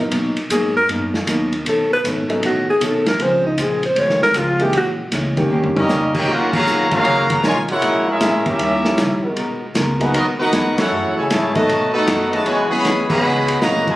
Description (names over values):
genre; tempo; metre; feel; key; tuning
jazz, big band swing; 156 BPM; 4/4; swing 65% on 8ths; Eb minor from 6.3 s; A4 = 440 Hz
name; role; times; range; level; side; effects
warm upright piano; accompaniment; 0.0-13.9 s; D#3 to A#4; -22 LUFS; equal; none
upright bass; bass; 0.0-14.0 s; G1 to B2; -28 LUFS; equal; none
archtop guitar, miked and amplified; accompaniment; 0.1-13.9 s; A#2 to Bb4; -24 LUFS; left 1 dB; none
vintage drum kit; drums; 0.1-13.9 s; crash cymbal, hi-hat, kick drum, ride cymbal, snare drum, toms; -23 LUFS; equal; none
breathy alto saxophone; melody; 0.5-4.9 s; D#4 to C#5; -17 LUFS; equal; plate reverb
clear trumpet section; melody; 5.8-14.0 s; Cb4 to B5; -18 LUFS; equal; plate reverb
bright trombone section; second line; 5.8-14.0 s; B2 to G4; -21 LUFS; equal; none
warm trombone section; sustained chords; 6.9-13.2 s; Eb3 to Bb4; -27 LUFS; left 1 dB; none
room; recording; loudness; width
moderate large studio reverb, RT60 1.1 s; recorded on a phone in the room, club reverb; -15 LUFS; side -16 dB against mid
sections
0.0-6.3 A section; 6.3-14.0 B section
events
alto saxophone solo 0.0-6.3; drum fill 5.5-5.9; band accent 6.5, 10.7, 13.0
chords
0.1 Bmaj7; 1.7 B9; 3.2 C#maj7; 4.7 A#m7b5; 5.5 D#7; 6.3 Ebm9; 7.8 Bbm7b5; 8.6 Eb7b9; 9.4 Abm9; 10.9 Gbm9; 11.7 B7; 12.5 E69